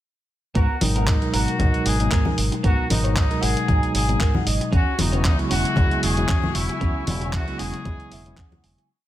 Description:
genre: nu-disco, nu disco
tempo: 115 BPM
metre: 4/4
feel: swing 55% on 16ths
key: G# minor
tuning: A4 = 440 Hz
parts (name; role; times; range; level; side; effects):
- electric guitar at the edge of break-up; riff; 0.5-8.9 s; B3 to G#5; -31 LUFS; right 2 dB; analog chorus
- warm trumpet section; melody; 0.6-8.6 s; D#4 to G#4; -28 LUFS; left 2 dB; vintage 12-bit sampler grit, tape echo
- fingered electric bass with an envelope filter; bass; 0.6-8.7 s; E1 to G#2; -25 LUFS; equal; sidechain pumping
- dusty soul sampler-style drum kit; drums; 0.6-8.9 s; handclaps, hi-hat; -28 LUFS; equal; none
- electronic kick drum; drums; 0.6-8.5 s; none; -21 LUFS; equal; none
- tine electric piano; accompaniment; 0.8-8.9 s; B2 to A#4; -26 LUFS; equal; auto-pan, sidechain pumping
- congas; percussion; 0.8-8.6 s; none; -28 LUFS; left 2 dB; none
- muted chamber string section; sustained chords; 4.7-8.9 s; F#4 to C#6; -34 LUFS; left 3 dB; vintage 12-bit sampler grit, sidechain pumping
room: digital ambience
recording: none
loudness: -19 LUFS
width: side -13 dB against mid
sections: 0.6-8.9 groove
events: clean electric guitar fill 3.2-4.7, 7.9-8.9; fade-out 6.1-8.9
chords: 0.6 G#m9; 4.7 E69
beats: | 0.55 1.07 1.60 2.12 | 2.64 3.16 3.68 4.21 | 4.73 5.25 5.77 6.29 | 6.81 7.34 7.86 8.38

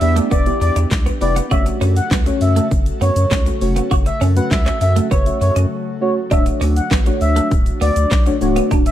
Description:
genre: dance-pop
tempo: 100 BPM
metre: 4/4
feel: straight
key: unclear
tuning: A4 = 440 Hz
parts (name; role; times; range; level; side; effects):
- expressive synth lead; melody; 0.0-8.9 s; C#5 to F#5; -22 LUFS; equal; chorus, sidechain pumping, tape echo
- deep mellow chord stab; accompaniment; 0.0-8.9 s; A3 to E5; -22 LUFS; left 1 dB; chorus, phaser, sidechain pumping
- airy breathy pad; sustained chords; 0.0-8.9 s; C#3 to A4; -27 LUFS; equal; chorus, sidechain pumping
- twelve-string electric guitar; riff; 0.0-8.9 s; A3 to F#4; -24 LUFS; right 4 dB; analog chorus
- saturated sub bass; bass; 0.0-8.9 s; C#1 to F#2; -17 LUFS; equal; sidechain pumping
- pop drum kit; drums; 0.0-8.9 s; handclaps, hi-hat, kick drum, shaker, snare drum; -18 LUFS; equal; none
- tube shaker; percussion; 0.0-8.9 s; none; -40 LUFS; left 8 dB; none
- downlifter; sound effects; 0.0-1.5 s; none; barely audible; none; none
room: little or no reverb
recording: dark, warm production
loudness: -14 LUFS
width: side -12 dB against mid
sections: 0.0-8.9 A section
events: break 5.7-6.3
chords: 0.0 Em7; 1.5 F#m; 6.3 Dmaj7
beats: 0.31 0.91 | 1.51 2.11 2.71 3.31 | 3.91 4.51 5.11 5.71 | 6.31 6.91 7.51 8.11 | 8.71

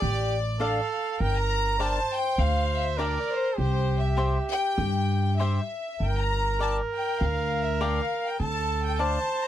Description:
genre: mexican folk, mariachi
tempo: 101 BPM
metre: 4/4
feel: swing 54% on 8ths, rubato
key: unclear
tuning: A4 = 441 Hz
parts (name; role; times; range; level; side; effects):
- clear studio violin section; melody; 0.0-9.5 s; C5 to Bb5; -29 LUFS; left 2 dB; none
- clear trumpet; second line; 0.0-9.5 s; G4 to C5; -30 LUFS; right 4 dB; none
- upright bass; bass; 0.0-9.2 s; G1 to G2; -26 LUFS; equal; none
- cavaquinho; accompaniment; 0.6-9.2 s; D4 to A5; -29 LUFS; left 4 dB; none
room: light reverb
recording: dry, close 1970s-style studio recording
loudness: -24 LUFS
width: side -11 dB against mid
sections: 0.0-9.5 A section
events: none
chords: 0.0 Dm; 1.2 Gm; 3.6 C; 6.0 Gmadd9; 8.4 Dm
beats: 0.01 0.60 | 1.20 1.79 2.38 2.98 | 3.58 4.17 4.78 5.39 | 6.00 6.60 7.21 7.81 | 8.40 8.99

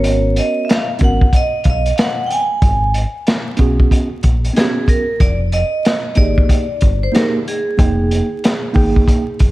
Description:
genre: hip hop, jazz-hop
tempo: 93 BPM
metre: 4/4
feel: swing 65% on 16ths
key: unclear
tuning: A4 = 438 Hz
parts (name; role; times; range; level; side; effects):
- vibraphone with hard mallets; melody; 0.0-9.5 s; G#4 to G#5; -20 LUFS; right 1 dB; none
- mellow tine electric piano; accompaniment; 0.0-9.2 s; Bb3 to G5; -20 LUFS; right 2 dB; medium stereo tremolo
- deep dub fingered electric bass; bass; 0.0-9.5 s; F1 to B1; -17 LUFS; equal; none
- crunchy breakbeat drum kit; drums; 0.0-9.5 s; hi-hat, kick drum, snare drum; -14 LUFS; equal; none
room: light reverb, small room ambience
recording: dark, warm production, vinyl crackle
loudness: -13 LUFS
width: side -17 dB against mid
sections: 0.0-9.5 A section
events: none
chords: 0.0 G#m11; 5.2 Fm11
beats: | 0.04 0.68 1.33 1.97 | 2.62 3.27 3.91 4.55 | 5.20 5.84 6.49 7.14 | 7.78 8.43 9.07

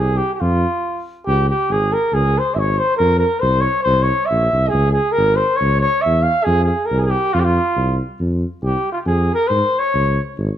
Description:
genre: balkan folk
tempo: 138 BPM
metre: 2/4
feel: straight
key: unclear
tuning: A4 = 438 Hz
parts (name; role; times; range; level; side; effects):
- warm flugelhorn; melody; 0.0-10.2 s; F4 to F5; -17 LUFS; equal; none
- dark tuba; bass; 0.0-10.5 s; Ab1 to Ab2; -19 LUFS; equal; none
room: moderate recital hall reverb, RT60 1.3 s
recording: none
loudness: -15 LUFS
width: side -10 dB against mid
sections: 0.0-1.3 A section; 1.3-8.2 A section; 8.2-10.6 B section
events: break 0.8-1.3; flugelhorn solo 8.2-10.6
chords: 0.4 N.C.; 1.3 Db5; 3.0 F5; 3.9 C; 4.7 Db5; 6.5 F5; 8.2 N.C.; 10.0 Db5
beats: | 0.41 0.84 | 1.27 1.71 | 2.14 2.57 | 3.00 3.44 | 3.87 4.30 | 4.74 5.17 | 5.60 6.04 | 6.47 6.91 | 7.34 7.78 | 8.21 8.64 | 9.08 9.52 | 9.95 10.39

